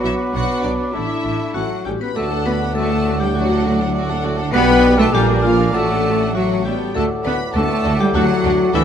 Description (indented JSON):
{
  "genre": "cinematic, playful, whimsical film cue",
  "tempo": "100 BPM",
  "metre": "2/4",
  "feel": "straight",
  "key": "D major",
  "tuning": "A4 = 440 Hz",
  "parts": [
    { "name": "rich studio violin section", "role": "melody", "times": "0.0-8.8 s", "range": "D5 to B5", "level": "-28 LUFS", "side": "left 4 dB", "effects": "none" },
    { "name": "mellow clarinet", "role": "second line", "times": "0.0-8.8 s", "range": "E4 to B4", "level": "-25 LUFS", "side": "left 2 dB", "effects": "none" },
    { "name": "mellow cor anglais", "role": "second line", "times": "0.0-8.8 s", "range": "A4 to D5", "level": "-28 LUFS", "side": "right 4 dB", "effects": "none" },
    { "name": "mellow hollow silver concert flute", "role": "second line", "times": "0.0-8.8 s", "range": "E5 to D6", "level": "-28 LUFS", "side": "left 2 dB", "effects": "none" },
    { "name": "rich studio violin section", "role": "second line", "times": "0.0-8.8 s", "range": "D4 to G5", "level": "-30 LUFS", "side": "left 3 dB", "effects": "none" },
    { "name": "rich chamber viola section", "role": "accompaniment", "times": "0.0-8.8 s", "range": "F#3 to B4", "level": "-27 LUFS", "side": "right 2 dB", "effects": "none" },
    { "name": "warm bassoon", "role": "accompaniment", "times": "0.0-8.8 s", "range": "A2 to A3", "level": "-28 LUFS", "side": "right 2 dB", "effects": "none" },
    { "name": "mellow French horn section", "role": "sustained chords", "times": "0.0-8.8 s", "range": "E3 to F#4", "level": "-23 LUFS", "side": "left 4 dB", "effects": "none" },
    { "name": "dark tuba", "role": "bass", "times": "0.0-8.8 s", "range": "A1 to D2", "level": "-25 LUFS", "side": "right 4 dB", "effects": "none" },
    { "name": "rich studio cello section", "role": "bass", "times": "0.0-8.8 s", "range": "E3 to F#4", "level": "-23 LUFS", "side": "right 1 dB", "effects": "none" },
    { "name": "warm studio double bass section", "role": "bass", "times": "0.0-8.8 s", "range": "A1 to D2", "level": "-24 LUFS", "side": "right 3 dB", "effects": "none" },
    { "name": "marimba with hard mallets", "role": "melody", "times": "1.5-8.8 s", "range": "E4 to B4", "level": "-25 LUFS", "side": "left 8 dB", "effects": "none" }
  ],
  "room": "light reverb",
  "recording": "none",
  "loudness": "-15 LUFS",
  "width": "side -8 dB against mid",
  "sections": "0.0-2.2 A section; 2.2-8.8 B section",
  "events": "none",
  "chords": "0.0 Bm; 0.9 Asus4; 1.5 A; 2.2 D; 4.5 G/B; 5.1 Bb7; 5.7 D/A; 6.3 A; 7.0 D"
}